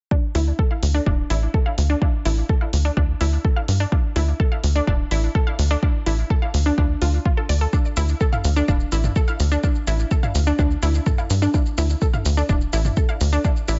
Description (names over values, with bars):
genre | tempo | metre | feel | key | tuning
melodic techno | 126 BPM | 4/4 | straight | D minor | A4 = 441 Hz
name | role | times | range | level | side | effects
unison pluck | arpeggios | 0.1-13.7 s | D4 to F5 | -28 LUFS | equal | sidechain pumping, dub echo
electronic kick drum | drums | 0.1-13.5 s | none | -22 LUFS | equal | none
tight sequencer bass | bass | 0.3-13.8 s | D1 to G2 | -22 LUFS | equal | tube saturation, sidechain pumping
punchy analog drum machine | drums | 0.3-13.8 s | hi-hat, shaker, toms | -33 LUFS | equal | overdrive
room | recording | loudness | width
little or no reverb | echo-heavy mix, nothing above 7.7 kHz | -20 LUFS | mono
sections
0.1-13.8 A section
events
none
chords
0.1 Dm